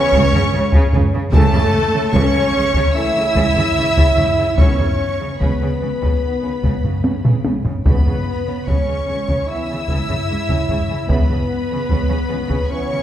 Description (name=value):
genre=cinematic, epic orchestral film score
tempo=74 BPM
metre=4/4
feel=straight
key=C# minor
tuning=A4 = 440 Hz
part: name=rich symphonic violin section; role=melody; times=0.0-13.0 s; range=A5 to E6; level=-27 LUFS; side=left 2 dB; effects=none
part: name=hollow concert flute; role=second line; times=0.0-13.0 s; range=A4 to E5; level=-25 LUFS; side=left 1 dB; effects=none
part: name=rich symphonic violin section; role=second line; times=0.0-13.0 s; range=A4 to E5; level=-29 LUFS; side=left 2 dB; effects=none
part: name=clear symphonic viola section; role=accompaniment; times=0.0-13.0 s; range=A3 to E4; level=-27 LUFS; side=right 2 dB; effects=none
part: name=bright trombone section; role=sustained chords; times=0.0-13.0 s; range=D#3 to B3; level=-30 LUFS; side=equal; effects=none
part: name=dark French horn section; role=sustained chords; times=0.0-13.0 s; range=A3 to E4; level=-26 LUFS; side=left 1 dB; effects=none
part: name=warm trumpet section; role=stabs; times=0.0-13.0 s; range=A4 to E5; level=-25 LUFS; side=right 2 dB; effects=none
part: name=rich symphonic cello section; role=bass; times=0.0-13.0 s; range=C#3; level=-25 LUFS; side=right 2 dB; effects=none
part: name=rich symphonic double bass section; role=bass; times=0.1-12.4 s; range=C#2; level=-24 LUFS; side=right 2 dB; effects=none
part: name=taiko ensemble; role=drums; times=0.1-13.0 s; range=none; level=-18 LUFS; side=equal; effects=none
room=wet scoring stage reverb, RT60 1.7 s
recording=heard from further back in the room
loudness=-15 LUFS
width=side -11 dB against mid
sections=0.0-13.0 A section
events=drum fill 7.0-7.9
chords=0.0 N.C.; 1.3 A/C#; 4.6 B/C#; 7.9 C#m7